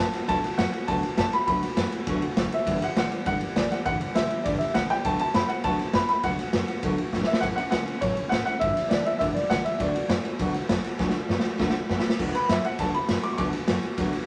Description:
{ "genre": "rockabilly", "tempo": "202 BPM", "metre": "4/4", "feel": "straight", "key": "D major", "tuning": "A4 = 440 Hz", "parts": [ { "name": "dark upright piano", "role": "melody", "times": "0.0-14.2 s", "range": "B4 to D6", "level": "-29 LUFS", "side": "equal", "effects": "none" }, { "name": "picked steel-string acoustic guitar", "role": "accompaniment", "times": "0.0-14.3 s", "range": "G2 to G4", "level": "-32 LUFS", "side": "equal", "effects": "none" }, { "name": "upright bass", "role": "bass", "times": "0.0-14.2 s", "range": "F#1 to F#2", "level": "-37 LUFS", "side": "equal", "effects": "none" }, { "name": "raw garage drum kit", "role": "drums", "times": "0.1-14.2 s", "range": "crash cymbal, kick drum, ride cymbal, snare drum, splash cymbal", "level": "-29 LUFS", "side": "equal", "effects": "none" } ], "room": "moderate studio reverb, RT60 0.8 s", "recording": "none", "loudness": "-26 LUFS", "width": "mono", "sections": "0.0-12.2 A section; 12.2-14.3 B section", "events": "drum fill 7.1, 11.0-12.2; upright piano solo 12.2-14.3", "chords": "0.0 D6; 2.7 G6; 5.0 D6; 7.4 A6; 8.6 G6; 9.8 D6", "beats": "| 0.28 0.58 0.88 1.18 | 1.48 1.77 2.07 2.37 | 2.67 2.97 3.26 3.56 | 3.86 4.16 4.46 4.75 | 5.05 5.35 5.64 5.94 | 6.24 6.54 6.83 7.13 | 7.43 7.72 8.02 8.32 | 8.62 8.91 9.21 9.51 | 9.81 10.11 10.40 10.70 | 11.00 11.30 11.60 11.89 | 12.19 12.49 12.79 13.09 | 13.38 13.68 13.98" }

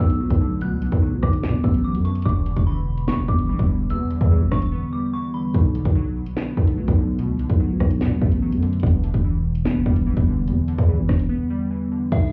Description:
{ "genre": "hip hop, drill", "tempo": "146 BPM", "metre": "4/4", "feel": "half-time", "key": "unclear", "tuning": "A4 = 439 Hz", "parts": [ { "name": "delicate synth tine bell", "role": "melody", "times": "0.0-5.5, 12.1-12.3 s", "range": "E5 to F#6", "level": "-36 LUFS", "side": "equal", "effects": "chorus, phaser, low-pass filter, tape echo" }, { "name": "glassy digital keys", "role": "accompaniment", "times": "0.0-12.3 s", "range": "E2 to B3", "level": "-26 LUFS", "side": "equal", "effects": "chorus, low-pass filter" }, { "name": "growling 808-style bass", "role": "bass", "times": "0.0-12.3 s", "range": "E1 to B2", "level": "-25 LUFS", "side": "equal", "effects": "none" }, { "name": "drill drum kit", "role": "drums", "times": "0.0-12.2 s", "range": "crash cymbal, hi-hat, kick drum, rim click, snare drum", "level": "-22 LUFS", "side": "equal", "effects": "none" } ], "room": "little or no reverb", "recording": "heard muffled through a wall, club reverb, vinyl crackle, EQ", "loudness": "-21 LUFS", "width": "mono", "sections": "0.0-12.1 A section", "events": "break 4.7-5.5, 11.3-12.1", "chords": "0.0 Bm7; 2.3 Em7; 5.5 Bm7; 8.8 Em7", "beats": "0.20 | 0.61 1.02 1.43 1.84 | 2.26 2.67 3.08 3.49 | 3.90 4.31 4.72 5.13 | 5.54 5.96 6.37 6.78 | 7.19 7.60 8.01 8.42 | 8.83 9.24 9.65 10.06 | 10.47 10.89 11.30 11.71 | 12.12" }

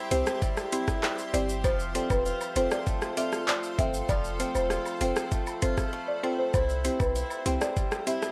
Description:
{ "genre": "dancehall", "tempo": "98 BPM", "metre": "4/4", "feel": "straight", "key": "unclear", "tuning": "A4 = 439 Hz", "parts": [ { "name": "granular cloud pad", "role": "sustained chords", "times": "0.0-8.3 s", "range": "G4 to C6", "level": "-42 LUFS", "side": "equal", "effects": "built-in reverb, sidechain pumping" }, { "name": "picked swing-style acoustic guitar", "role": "arpeggios", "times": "0.0-8.3 s", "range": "F3 to F4", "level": "-37 LUFS", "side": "equal", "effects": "none" }, { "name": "folk marimba with medium mallets", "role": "melody", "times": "0.1-8.2 s", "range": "B4 to E5", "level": "-34 LUFS", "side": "equal", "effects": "analog delay" }, { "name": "mallet-like synth pluck", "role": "accompaniment", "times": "0.1-8.2 s", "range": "C4 to D5", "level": "-36 LUFS", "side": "equal", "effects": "chorus" }, { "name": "warm 808-style bass", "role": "bass", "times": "0.1-7.6 s", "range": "E1 to C2", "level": "-35 LUFS", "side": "equal", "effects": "none" }, { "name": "island pop drum kit", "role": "drums", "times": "0.1-8.3 s", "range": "handclaps, hi-hat, kick drum, rim click, shaker", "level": "-32 LUFS", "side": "equal", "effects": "overdrive" }, { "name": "cabasa and woodblock", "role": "percussion", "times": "0.1-8.2 s", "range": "none", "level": "-45 LUFS", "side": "equal", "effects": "none" } ], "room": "little or no reverb", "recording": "dry, gritty hardware recording", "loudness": "-28 LUFS", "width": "mono", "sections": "0.0-8.3 A section", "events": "silent gap 5.9-6.5", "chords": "0.0 C; 1.6 F; 6.5 C", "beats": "0.42 1.03 | 1.64 2.25 2.87 3.48 | 4.09 4.70 5.32 5.93 | 6.54 7.15 7.76" }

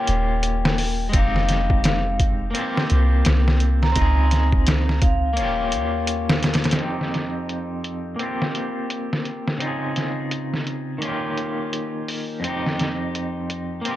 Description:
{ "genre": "trip hop", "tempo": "85 BPM", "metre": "4/4", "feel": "swing 60% on 16ths", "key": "F minor", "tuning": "A4 = 439 Hz", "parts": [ { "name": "vibraphone with medium hard mallets", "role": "melody", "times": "0.0-6.7 s", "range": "F5 to Bb5", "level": "-28 LUFS", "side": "moving between left 8 dB and right 7 dB", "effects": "auto-pan, tape echo" }, { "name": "electric guitar at the edge of break-up", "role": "accompaniment", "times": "0.0-14.0 s", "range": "F2 to Ab4", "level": "-25 LUFS", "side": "equal", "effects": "tremolo, vintage 12-bit sampler grit, low-pass filter, tape echo" }, { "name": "soft 808-style bass", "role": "bass", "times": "0.1-6.8 s", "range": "Eb1 to Eb2", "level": "-21 LUFS", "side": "equal", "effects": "none" }, { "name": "trip hop sampler-style drum kit", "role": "drums", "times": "0.1-14.0 s", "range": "hi-hat, kick drum, snare drum", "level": "-22 LUFS", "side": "equal", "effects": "low-pass filter on kick, low-pass filter on hats, low-pass filter on snare" } ], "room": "light reverb", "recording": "none", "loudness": "-20 LUFS", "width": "side -14 dB against mid", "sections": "0.0-6.8 A section; 6.8-14.0 B section", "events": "none", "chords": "0.0 Eb9; 1.1 Fm9; 2.6 C7sus4; 4.0 Dbmaj9; 5.4 Eb9; 6.8 F7sus2; 8.2 C7sus4; 9.6 Dbmaj9; 11.0 Eb9; 12.4 F7sus2", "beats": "0.44 | 1.14 1.85 2.55 3.26 | 3.96 4.67 5.38 6.08 | 6.79 7.50 8.20 8.91 | 9.61 10.32 11.02 11.73 | 12.44 13.14 13.85" }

